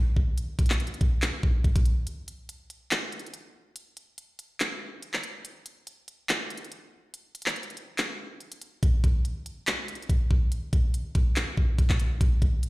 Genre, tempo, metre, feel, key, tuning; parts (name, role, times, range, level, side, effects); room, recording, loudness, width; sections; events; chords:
hip hop; 142 BPM; 4/4; half-time
trap drum kit; drums; 0.2-12.7 s; handclaps, hi-hat, kick drum; -24 LUFS; equal
digital ambience; played on a big sound system in a bare room, large studio reverb; -24 LUFS; side -21 dB against mid
0.0-12.7 A section
break 2.1-8.8